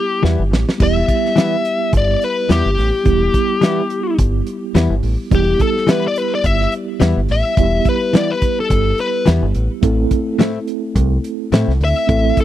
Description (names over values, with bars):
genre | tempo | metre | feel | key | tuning
straight-eighth soul blues | 106 BPM | 4/4 | swing 55% on 16ths | E minor | A4 = 440 Hz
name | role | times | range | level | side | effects
smooth overdriven lead guitar | melody | 0.0-12.4 s | G4 to E5 | -19 LUFS | left 3 dB | none
mellow tine electric piano | accompaniment | 0.0-12.4 s | G3 to A4 | -21 LUFS | right 5 dB | medium stereo tremolo
direct-recorded clean electric guitar | stabs | 0.2-11.7 s | A2 to E4 | -18 LUFS | left 6 dB | none
deep dub fingered electric bass | bass | 0.2-12.3 s | E1 to A2 | -17 LUFS | equal | none
warm soul drum kit | drums | 0.2-12.4 s | crash cymbal, hi-hat, kick drum, snare drum | -17 LUFS | equal | none
room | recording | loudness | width
little or no reverb | dry, close 1970s-style studio recording | -14 LUFS | side -12 dB against mid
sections
0.8-12.4 A section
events
drum fill 0.2-0.8; lead electric guitar solo 0.8-12.4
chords
0.0 Em; 9.8 Am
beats
0.24 | 0.80 1.37 1.93 2.50 | 3.06 3.63 4.19 4.76 | 5.32 5.88 6.45 7.01 | 7.58 8.14 8.71 9.27 | 9.84 10.40 10.96 11.53 | 12.09